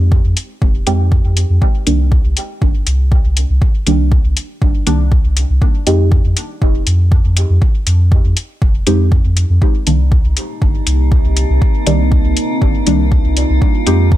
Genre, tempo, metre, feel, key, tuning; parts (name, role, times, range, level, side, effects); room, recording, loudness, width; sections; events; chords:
dub techno; 120 BPM; 4/4; straight; C minor; A4 = 442 Hz
deep mellow chord stab; stabs; 0.0-14.1 s; Eb3 to G4; -19 LUFS; right 1 dB; chorus, phaser, cassette tape, sidechain pumping, dub echo
soft dub sub bass; bass; 0.0-14.2 s; F1 to F2; -13 LUFS; equal; sidechain pumping
electronic kick drum; drums; 0.1-14.2 s; -13 LUFS; equal; overdrive
electronic hi-hat; drums; 0.4-14.0 s; -20 LUFS; left 3 dB
deep dark ambient pad; sustained chords; 10.5-14.2 s; Ab3 to G4; -21 LUFS; right 1 dB; chorus, built-in reverb, sidechain pumping
metallic inharmonic drone; texture; 10.4-14.2 s; Eb4; -24 LUFS; right 1 dB; chorus, built-in reverb, sidechain pumping
little or no reverb; -11 LUFS; side -14 dB against mid
0.0-1.6 A section; 1.6-14.2 A section
0.0 Fm7; 1.6 Cm7; 5.6 Fm7; 9.6 Cm7; 13.6 Fm7